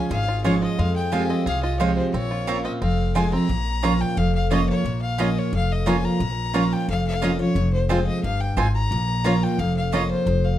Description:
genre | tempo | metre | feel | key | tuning
bluegrass | 177 BPM | 4/4 | straight | unclear | A4 = 443 Hz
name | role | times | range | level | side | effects
bluegrass banjo | melody | 0.0-10.0 s | F3 to Ab4 | -30 LUFS | right 3 dB | plate reverb
clear fiddle | melody | 0.0-10.6 s | C5 to Bb5 | -28 LUFS | left 4 dB | plate reverb
picked steel-string acoustic guitar | accompaniment | 0.0-10.6 s | F2 to C5 | -23 LUFS | right 1 dB | none
upright bass | bass | 0.1-10.6 s | F1 to F2 | -25 LUFS | equal | none
mandolin | stabs | 0.4-10.0 s | Ab3 to Bb5 | -27 LUFS | right 7 dB | none
room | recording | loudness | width
light reverb | dark, warm production | -20 LUFS | side -12 dB against mid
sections
0.0-3.5 A section; 3.5-10.6 B section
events
none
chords
0.0 Db; 0.8 Fmadd9; 2.1 Bbmadd9; 2.8 Fm; 3.5 Bbm; 7.6 Fm; 8.9 Bbm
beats
0.11 0.45 | 0.79 1.12 1.46 1.80 | 2.14 2.48 2.82 3.16 | 3.50 3.83 4.17 4.51 | 4.85 5.19 5.53 5.87 | 6.21 6.54 6.88 7.22 | 7.56 7.90 8.24 8.58 | 8.92 9.26 9.59 9.93 | 10.27

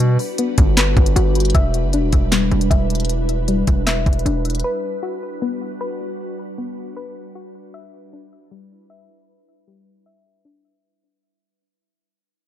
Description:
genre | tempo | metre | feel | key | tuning
hip hop, trap | 155 BPM | 4/4 | half-time | E minor | A4 = 440 Hz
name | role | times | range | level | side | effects
ethereal airy pad | sustained chords | 0.0-10.8 s | G3 to B4 | -27 LUFS | right 1 dB | ensemble chorus, built-in reverb, low-pass filter
soft round pluck | arpeggios | 0.0-10.8 s | G3 to E5 | -24 LUFS | left 6 dB | chorus, low-pass filter, ping-pong delay
distorted 808-style bass | bass | 0.0-4.6 s | E1 to B2 | -18 LUFS | equal | distortion
trap drum kit | drums | 0.0-4.6 s | handclaps, hi-hat, kick drum, snare drum | -17 LUFS | equal | none
room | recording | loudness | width
digital ambience | dark, warm production | -16 LUFS | side -11 dB against mid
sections
0.0-10.8 A section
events
fade-out 0.0-10.8; filter sweep 0.0-10.8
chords
0.0 Gmaj7; 1.5 Em7; 4.6 Gmaj7; 7.7 Em7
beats
| 0.00 0.39 0.77 1.16 | 1.55 1.93 2.32 2.71 | 3.10 3.48 3.87 4.26 | 4.64 5.03 5.42 5.80 | 6.19 6.58 6.97 7.35 | 7.74 8.13 8.51 8.90 | 9.29 9.68 10.06 10.45

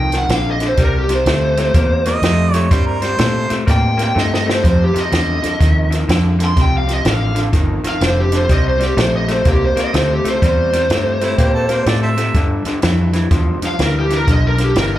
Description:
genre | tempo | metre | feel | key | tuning
electric blues shuffle | 124 BPM | 4/4 | swing 64% on 8ths | unclear | A4 = 439 Hz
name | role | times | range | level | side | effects
lead guitar through a small cranked amp | melody | 0.0-15.0 s | G4 to C6 | -19 LUFS | equal | overdrive, slapback echo
electric guitar through a small old amp | riff | 0.0-15.0 s | F2 to Bb3 | -20 LUFS | left 2 dB | none
vintage muted fingered electric bass | bass | 0.0-15.0 s | F1 to Bb2 | -17 LUFS | equal | none
compact cocktail drum kit | drums | 0.1-14.9 s | hi-hat, kick drum, snare drum | -18 LUFS | equal | none
warm harmonica | second line | 2.1-3.6, 11.2-12.5 s | E4 to E5 | -22 LUFS | right 3 dB | slapback echo
room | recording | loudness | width
little or no reverb | live gig heard through the venue's PA, club reverb | -13 LUFS | side -13 dB against mid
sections
0.0-15.0 A section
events
drum fill 4.2-4.6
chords
0.0 F5; 0.8 C7; 4.6 F7; 8.5 C7; 12.3 G7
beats
0.29 | 0.78 1.26 1.74 2.23 | 2.71 3.19 3.67 4.16 | 4.64 5.12 5.60 6.08 | 6.57 7.05 7.53 8.01 | 8.49 8.97 9.46 9.94 | 10.42 10.90 11.38 11.86 | 12.35 12.83 13.31 13.79 | 14.28 14.76

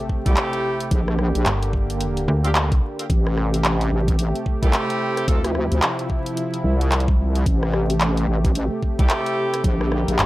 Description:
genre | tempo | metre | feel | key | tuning
glitch hop | 110 BPM | 4/4 | swing 61% on 16ths | A phrygian | A4 = 440 Hz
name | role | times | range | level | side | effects
warm analog pad | sustained chords | 0.0-10.3 s | C3 to G4 | -27 LUFS | equal | chorus, tremolo, sidechain pumping
impact | sound effects | 0.0-0.9 s | none | -43 LUFS | equal | none
electronic kick drum | drums | 0.1-9.8 s | none | -20 LUFS | equal | none
bright horn section | stabs | 0.3-5.4, 9.0-9.6 s | A3 to A4 | -27 LUFS | right 1 dB | sidechain pumping, tape echo
wobble bass | bass | 0.3-10.2 s | A1 to D2 | -20 LUFS | equal | chorus
dubstep drum kit | drums | 0.3-10.3 s | handclaps, hi-hat, rim click | -24 LUFS | equal | none
slap-like FM bass | bass | 1.5-2.8, 10.2-10.3 s | G1 to D2 | -21 LUFS | equal | none
room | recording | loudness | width
digital ambience | dry, gritty hardware recording, vinyl crackle | -18 LUFS | side -17 dB against mid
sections
0.0-10.3 A section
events
impact 0.0-0.9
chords
0.0 Am7; 0.9 Bb6; 3.1 Am7; 5.3 Dm9; 7.5 Am7; 9.6 Bb6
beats
0.37 | 0.91 1.46 2.00 2.55 | 3.10 3.64 4.19 4.73 | 5.28 5.82 6.37 6.91 | 7.46 8.01 8.55 9.10 | 9.64 10.19

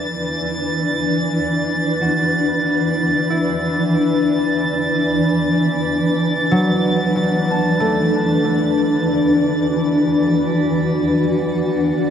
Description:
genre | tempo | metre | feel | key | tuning
ambient | free time | none | none | unclear | A4 = 440 Hz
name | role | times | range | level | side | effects
granular cloud pad | sustained chords | 0.0-12.1 s | E3 to D5 | -17 LUFS | left 1 dB | built-in reverb
drifting glass-harmonics texture | texture | 0.0-12.1 s | A6 | -24 LUFS | right 2 dB | chorus, built-in reverb
concert harp | arpeggios | 2.0-11.1 s | F#3 to A5 | -24 LUFS | equal | tape echo
room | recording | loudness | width
wet shimmer reverb, RT60 6.9 s | none | -15 LUFS | side -8 dB against mid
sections
0.0-12.1 A section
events
fade-in on ambient pad 0.0-12.1; fade-in on harp 0.0-12.1; fade-out on synth texture 0.0-12.1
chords
0.0 E9sus4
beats
free time

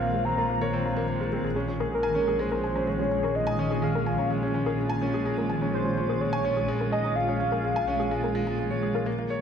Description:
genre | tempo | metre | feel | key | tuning
electronica | 126 BPM | 4/4 | straight | unclear | A4 = 441 Hz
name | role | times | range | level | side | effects
warm velvety synth lead | melody | 0.0-8.6 s | Bb4 to Bb5 | -29 LUFS | equal | chorus
granular cloud pad | sustained chords | 0.0-9.4 s | Bb2 to F4 | -31 LUFS | right 1 dB | built-in reverb
clear concert grand piano | riff | 0.0-9.4 s | Ab3 to Ab5 | -30 LUFS | equal | digital delay
rich studio double bass section | bass | 0.0-9.0 s | Bb1 | -31 LUFS | equal | none
soft round pluck | arpeggios | 0.1-9.2 s | Ab4 to Bb5 | -37 LUFS | left 4 dB | none
room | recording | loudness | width
moderate concert hall reverb, RT60 2.6 s | none | -24 LUFS | side -7 dB against mid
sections
0.0-9.1 A section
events
none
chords
0.0 Bbmadd9; 1.4 Db/Bb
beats
0.02 0.50 0.97 | 1.45 1.93 2.40 2.88 | 3.35 3.83 4.31 4.78 | 5.26 5.74 6.21 6.69 | 7.17 7.64 8.12 8.59 | 9.07

